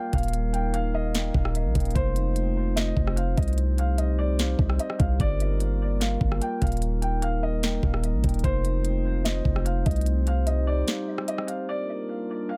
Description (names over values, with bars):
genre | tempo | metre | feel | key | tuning
hip hop, atmospheric cloud-rap | 148 BPM | 4/4 | half-time | G minor | A4 = 440 Hz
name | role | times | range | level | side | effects
felt-muted upright piano | melody | 0.0-12.6 s | C5 to G5 | -36 LUFS | equal | low-pass filter, dub echo
glass harmonica | sustained chords | 0.0-12.6 s | G3 to F5 | -33 LUFS | equal | none
warm 808-style bass | bass | 0.1-10.8 s | Eb1 to C2 | -27 LUFS | equal | none
trap drum kit | drums | 0.1-11.6 s | hi-hat, kick drum, rim click, snare drum | -29 LUFS | equal | none
room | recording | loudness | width
small room ambience | echo-heavy mix | -25 LUFS | mono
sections
0.0-11.7 A section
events
break 10.9-11.7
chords
0.0 Eb; 2.0 F7; 3.6 Cm; 5.2 Gm7; 6.8 Eb; 8.4 F7; 10.1 Cm; 11.7 Gm7